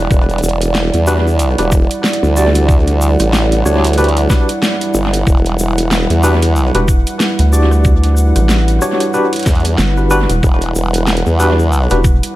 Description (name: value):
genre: glitch hop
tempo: 93 BPM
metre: 4/4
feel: swing 59% on 16ths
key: E minor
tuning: A4 = 439 Hz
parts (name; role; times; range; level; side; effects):
- dark analog pad; sustained chords; 0.0-12.4 s; G3 to F#5; -19 LUFS; right 1 dB; chorus, sidechain pumping
- formant-sweep wobble bass; bass; 0.0-11.9 s; E1 to E2; -13 LUFS; equal; chorus
- electronic kick drum; drums; 0.1-12.2 s; none; -12 LUFS; equal; none
- egg shaker; percussion; 0.1-12.3 s; none; -29 LUFS; left 2 dB; analog delay
- dubstep drum kit; drums; 0.3-12.3 s; hi-hat, rim click, snare drum; -20 LUFS; equal; analog delay
- tine electric piano; stabs; 1.1-12.0 s; D4 to D5; -18 LUFS; equal; medium tremolo, sidechain pumping, low-pass filter, analog delay
- rubbery square bass; bass; 6.7-12.2 s; E1 to D2; -12 LUFS; equal; none
room: light reverb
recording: echo-heavy mix, vinyl crackle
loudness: -10 LUFS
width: side -16 dB against mid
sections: 0.0-12.4 A section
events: filter sweep on tine electric piano 0.0-12.4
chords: 0.0 Em9